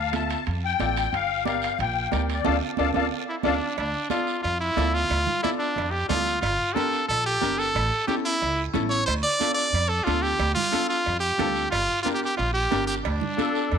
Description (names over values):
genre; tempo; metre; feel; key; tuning
latin, cumbia; 181 BPM; 4/4; straight; D minor; A4 = 440 Hz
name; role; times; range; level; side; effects
musette accordion; second line; 0.0-3.6, 13.4-13.8 s; A4 to A5; -27 LUFS; left 9 dB; none
upright bass; bass; 0.0-13.8 s; G1 to F2; -29 LUFS; right 1 dB; none
bright upright piano; accompaniment; 0.1-13.6 s; C#4 to E5; -31 LUFS; left 10 dB; none
congas; percussion; 0.1-13.8 s; none; -31 LUFS; right 16 dB; none
guiro; percussion; 0.1-13.8 s; none; -39 LUFS; right 16 dB; none
timbales and cowbell; percussion; 0.1-13.8 s; none; -35 LUFS; right 13 dB; none
brilliant trumpet; melody; 3.3-13.8 s; D4 to D5; -24 LUFS; right 1 dB; none
room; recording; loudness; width
moderate plate reverb, RT60 3.3 s; 1960s-style stereo with parts hard left and right; -22 LUFS; side -7 dB against mid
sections
0.0-3.8 A section; 3.8-13.8 B section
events
accordion solo 0.0-3.8; band accent 2.5-3.8; upright piano fill 2.8-3.8; drum fill 3.1-3.8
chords
0.0 Dm; 1.1 Gm; 2.5 Dm; 6.4 Gm; 7.8 A; 9.1 Dm; 11.7 Gm; 13.0 Dm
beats
0.13 0.46 0.79 | 1.12 1.46 1.79 2.12 | 2.45 2.78 3.12 3.45 | 3.78 4.11 4.44 4.77 | 5.10 5.43 5.77 6.10 | 6.43 6.76 7.09 7.42 | 7.75 8.08 8.41 8.75 | 9.08 9.41 9.74 10.07 | 10.40 10.73 11.06 11.39 | 11.72 12.05 12.39 12.72 | 13.05 13.38 13.71